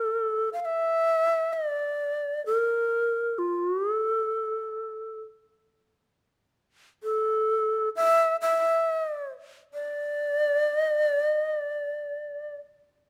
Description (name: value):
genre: japanese traditional, Japanese chamber music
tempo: free time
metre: none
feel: none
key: unclear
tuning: A4 = 440 Hz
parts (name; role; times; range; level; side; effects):
- bright long shakuhachi; solo; 0.0-12.6 s; A4 to F5; -27 LUFS; equal; none
room: light reverb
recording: close, detailed microphones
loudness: -27 LUFS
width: mono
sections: 0.0-13.1 A section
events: none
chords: none